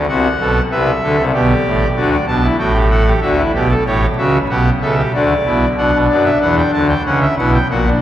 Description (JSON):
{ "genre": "classical, baroque-style 3-part fugue for pipe organ", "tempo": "94 BPM", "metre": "3/4", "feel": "straight", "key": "unclear", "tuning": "A4 = 440 Hz", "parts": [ { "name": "pipe organ, trumpet", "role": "solo", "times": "0.0-8.0 s", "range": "A1 to A5", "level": "-12 LUFS", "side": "equal", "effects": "none" } ], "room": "wet church reverb, RT60 3.5 s", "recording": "dark, warm production, vinyl crackle", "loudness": "-12 LUFS", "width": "side -12 dB against mid", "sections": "0.0-5.8 A section; 5.8-8.0 B section", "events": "none", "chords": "0.1 D7; 1.3 G/B; 2.0 D; 3.2 Em7/D; 3.9 A7; 5.1 D; 5.8 Bm; 7.1 C#m7b5", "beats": "| 0.08 0.71 1.33 | 1.96 2.59 3.22 | 3.85 4.49 5.13 | 5.77 6.41 7.05 | 7.69" }